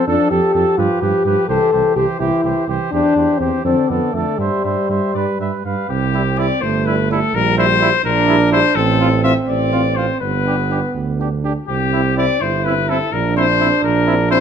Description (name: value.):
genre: classical, brass quintet.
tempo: 83 BPM (dotted quarters).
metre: 6/8.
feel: straight.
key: C major.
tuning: A4 = 440 Hz.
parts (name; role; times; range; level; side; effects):
clear trumpet; melody; 0.0-14.4 s; G4 to F5; -20 LUFS; left 7 dB; none.
warm trumpet; second line; 0.0-14.4 s; E4 to C5; -24 LUFS; right 8 dB; none.
warm French horn; accompaniment; 0.0-14.4 s; G3 to A4; -18 LUFS; left 4 dB; none.
warm trombone; accompaniment; 0.0-14.4 s; D3 to E4; -22 LUFS; right 4 dB; none.
mellow tuba; bass; 0.1-14.4 s; G1 to G2; -20 LUFS; right 5 dB; none.
room: moderate recital hall reverb, RT60 1.9 s.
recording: none.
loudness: -14 LUFS.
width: side -8 dB against mid.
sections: 0.0-5.9 A section; 5.9-14.4 B section.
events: none.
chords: 0.1 F69; 0.8 G7; 1.5 C; 2.9 C/E; 3.6 Dm/F; 4.4 C/G; 5.9 C; 7.3 C7/Bb; 8.8 F/A; 10.2 G; 11.7 C; 13.1 C7/Bb.